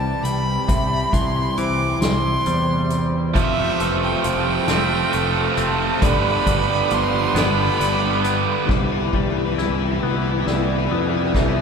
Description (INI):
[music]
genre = post-rock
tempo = 45 BPM (dotted quarters)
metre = 6/8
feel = straight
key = C major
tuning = A4 = 441 Hz
[part]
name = dark violin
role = melody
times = 0.0-8.4 s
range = E5 to D6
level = -25 LUFS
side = right 1 dB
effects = none
[part]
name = dark studio string section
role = sustained chords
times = 0.0-11.6 s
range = C3 to B4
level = -31 LUFS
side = left 1 dB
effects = none
[part]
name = twangy electric guitar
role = arpeggios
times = 0.0-11.6 s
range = G2 to E4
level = -27 LUFS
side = left 3 dB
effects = none
[part]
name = vibraphone with soft mallets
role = arpeggios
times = 0.0-11.6 s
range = B3 to E5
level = -29 LUFS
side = right 3 dB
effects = none
[part]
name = growling fingered electric bass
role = bass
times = 0.0-11.6 s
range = F1 to F2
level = -24 LUFS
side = equal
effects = overdrive
[part]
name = soft-mallet drum kit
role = drums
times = 0.2-11.6 s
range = hi-hat, kick drum, ride cymbal, snare drum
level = -25 LUFS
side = left 1 dB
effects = none
[part]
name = tight distorted guitar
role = riff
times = 3.3-8.7 s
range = F2 to D4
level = -22 LUFS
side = right 5 dB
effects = distortion
[part]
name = sludgy distorted guitar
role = riff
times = 8.7-11.6 s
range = E4 to B4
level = -24 LUFS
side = left 7 dB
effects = overdrive
[sound]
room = wet cathedral reverb, RT60 6.9 s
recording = recorded in a church or concert hall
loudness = -17 LUFS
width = side -6 dB against mid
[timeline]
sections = 0.0-8.7 A section; 8.7-11.6 B section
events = build-up 8.7-11.6; drum fill 8.7-11.6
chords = 0.0 Cmaj7; 3.4 Fmaj7; 6.0 G7; 8.7 Cmaj7